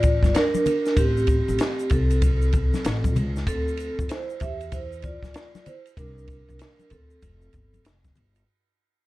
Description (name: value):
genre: hip hop, jazz-hop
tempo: 96 BPM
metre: 4/4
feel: swing 62% on 16ths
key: unclear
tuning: A4 = 440 Hz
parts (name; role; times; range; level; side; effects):
- vibraphone with soft mallets; accompaniment; 0.0-7.8 s; C4 to E5; -26 LUFS; right 1 dB; none
- upright bass; bass; 0.0-8.4 s; F1 to F2; -25 LUFS; equal; none
- compact cocktail drum kit; drums; 0.0-8.5 s; hi-hat, kick drum, ride cymbal, snare drum; -25 LUFS; equal; none
- congas and tube shaker; percussion; 0.0-8.5 s; none; -33 LUFS; left 5 dB; none
room: light reverb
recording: dark, warm production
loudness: -21 LUFS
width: side -18 dB against mid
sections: 0.0-8.5 A section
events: fade-out 0.0-8.5; vibraphone solo 0.0-8.5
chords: 0.0 Gm7 (rootless); 1.0 Am7; 2.8 A; 3.5 D7sus2; 6.0 Csus2; 7.2 Fadd9